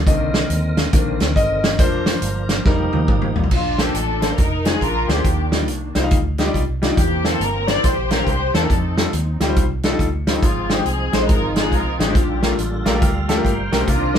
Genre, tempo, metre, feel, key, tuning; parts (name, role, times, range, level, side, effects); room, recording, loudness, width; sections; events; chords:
uptempo gospel; 139 BPM; 4/4; swing 64% on 8ths; Bb major; A4 = 440 Hz
clear concert grand piano; accompaniment; 0.0-14.2 s; Ab2 to Bb5; -23 LUFS; left 2 dB
tonewheel organ; sustained chords; 0.0-3.5, 10.4-14.2 s; D3 to G5; -27 LUFS; right 2 dB; slow rotary speaker, overdrive, chorus vibrato
vintage muted fingered electric bass; bass; 0.0-14.2 s; F1 to F2; -23 LUFS; equal
natural country drum kit; drums; 0.1-14.2 s; crash cymbal, hi-hat, kick drum, snare drum, toms; -19 LUFS; equal
muted studio string section; melody; 3.5-14.2 s; A3 to D5; -23 LUFS; left 1 dB
moderate studio ambience, RT60 0.5 s; band playing live in one room; -16 LUFS; side -8 dB against mid
0.0-3.5 A section; 3.5-14.2 B section
grand piano solo 0.0-3.5; drum fill 2.7-3.5; grand piano fill 12.6-13.9; tonewheel organ fill 12.6-13.9
0.1 Cm9; 1.8 Bb/F; 2.7 F9sus4; 3.5 Bbmaj9; 4.4 Fm7; 4.8 Bb9; 5.2 Ebmaj9; 7.0 C9; 8.7 F9; 10.4 Ab6; 12.2 Gm9